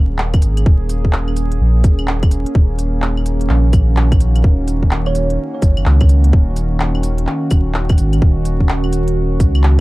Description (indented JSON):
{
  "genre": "future garage",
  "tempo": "127 BPM",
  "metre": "4/4",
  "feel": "swing 64% on 16ths",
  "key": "Eb minor",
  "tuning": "A4 = 440 Hz",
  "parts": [
    { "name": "warbly tape-like pad", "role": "sustained chords", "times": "0.0-9.8 s", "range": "Eb3 to Ab4", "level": "-22 LUFS", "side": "right 1 dB", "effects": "chorus, built-in reverb, sidechain pumping" },
    { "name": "warm sub bass", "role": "bass", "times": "0.0-9.8 s", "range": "Eb1 to Db2", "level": "-15 LUFS", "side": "equal", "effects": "sidechain pumping" },
    { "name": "organic electronic drum kit", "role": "drums", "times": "0.2-9.8 s", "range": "cabasa, claves, handclaps, hi-hat", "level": "-24 LUFS", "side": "equal", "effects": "none" },
    { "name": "electronic kick drum", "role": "drums", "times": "0.3-9.5 s", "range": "none", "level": "-12 LUFS", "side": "equal", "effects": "none" },
    { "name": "thumb-piano-like synth pluck", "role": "melody", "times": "5.1-5.3 s", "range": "Db5", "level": "-27 LUFS", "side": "right 5 dB", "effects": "chorus, cassette tape, tape echo" }
  ],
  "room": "digital ambience",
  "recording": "dark, warm production, vinyl crackle",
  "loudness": "-12 LUFS",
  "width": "side -20 dB against mid",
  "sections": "0.0-9.8 A section",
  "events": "none",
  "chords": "0.0 Bbm7/Eb; 2.5 Ebm7"
}